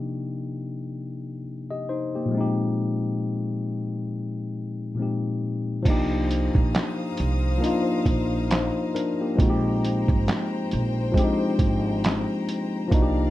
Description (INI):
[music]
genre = lo-fi hip hop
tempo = 68 BPM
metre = 4/4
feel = swing 58% on 16ths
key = C minor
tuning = A4 = 442 Hz
[part]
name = tine electric piano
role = accompaniment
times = 0.0-13.3 s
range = Bb2 to Eb5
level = -25 LUFS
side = left 2 dB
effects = none
[part]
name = rich chamber string section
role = sustained chords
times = 5.9-13.3 s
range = C5 to Eb6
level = -35 LUFS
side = left 4 dB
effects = none
[part]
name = upright bass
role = bass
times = 5.9-13.3 s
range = Ab1 to C2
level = -26 LUFS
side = right 1 dB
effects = none
[part]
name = lo-fi sampler-style drum kit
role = drums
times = 5.9-13.2 s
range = crash cymbal, handclaps, hi-hat, kick drum, snare drum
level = -23 LUFS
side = right 1 dB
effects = overdrive
[sound]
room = light reverb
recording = dark, warm production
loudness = -22 LUFS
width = side -15 dB against mid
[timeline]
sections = 0.0-5.9 A section; 5.9-13.3 B section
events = filter sweep on tine electric piano 0.0-5.9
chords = 0.0 Cm11; 2.3 Bb13sus4; 5.9 Cm11; 9.4 Bb13sus4